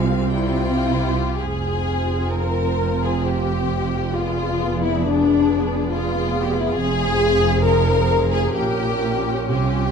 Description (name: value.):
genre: classical, slow romantic movement for string orchestra.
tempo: 67 BPM.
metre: 3/4.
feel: uneven beats, rubato.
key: F minor.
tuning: A4 = 438 Hz.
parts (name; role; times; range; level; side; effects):
rich studio violin section; melody; 0.0-9.9 s; C5 to Ab5; -37 LUFS; left 5 dB; none.
rich studio violin section; second line; 0.0-9.9 s; G3 to G5; -21 LUFS; left 4 dB; none.
dark studio viola section; accompaniment; 0.0-9.9 s; Cb4 to Bb4; -26 LUFS; right 2 dB; none.
rich chamber double bass section; bass; 0.0-9.9 s; F1 to C2; -24 LUFS; right 3 dB; none.
warm chamber cello section; bass; 0.0-9.9 s; F2 to C3; -26 LUFS; right 3 dB; none.
room: moderate recital hall reverb, RT60 1.6 s.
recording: dark, warm production.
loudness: -18 LUFS.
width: side -6 dB against mid.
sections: 0.0-1.4 A section; 1.4-9.9 B section.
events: none.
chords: 0.4 C; 1.4 Fm; 4.1 Fdim7; 6.8 Fm; 8.5 Gdim/Bb.